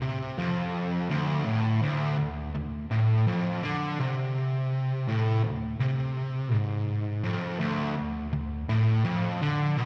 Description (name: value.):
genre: metal.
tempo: 83 BPM.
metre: 4/4.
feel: straight.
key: D minor.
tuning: A4 = 441 Hz.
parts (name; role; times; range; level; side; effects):
fuzz guitar; solo; 0.0-9.9 s; D2 to D3; -28 LUFS; equal; distortion, tape echo.
room: light reverb.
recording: live gig heard through the venue's PA, recital hall reverb.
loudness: -28 LUFS.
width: mono.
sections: 0.0-9.9 A section.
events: none.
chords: none.